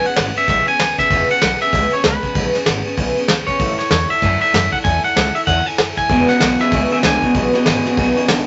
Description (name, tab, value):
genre	rockabilly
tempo	192 BPM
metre	4/4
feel	swing 61% on 8ths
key	E major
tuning	A4 = 440 Hz
part	twangy electric guitar	melody	0.0-7.5 s	B4 to G#5	-20 LUFS	equal	none
part	picked steel-string acoustic guitar	accompaniment	0.0-8.5 s	C#3 to C#5	-26 LUFS	equal	none
part	upright bass	bass	0.0-8.4 s	E1 to F#2	-26 LUFS	equal	none
part	soft brush drum kit	drums	0.0-8.4 s	kick drum, ride cymbal, snare drum	-21 LUFS	equal	none
part	electric guitar through a small old amp	riff	6.1-8.5 s	E2 to D3	-19 LUFS	equal	none
room	moderate studio reverb, RT60 0.8 s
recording	nothing above 7.9 kHz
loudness	-16 LUFS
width	mono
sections	0.0-8.5 A section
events	none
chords	0.0 E6; 3.6 A6; 6.1 E6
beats	0.17 0.48 0.79 | 1.10 1.42 1.73 2.04 | 2.35 2.66 2.98 3.29 | 3.60 3.91 4.22 4.54 | 4.85 5.16 5.47 5.79 | 6.10 6.41 6.72 7.04 | 7.35 7.66 7.98 8.29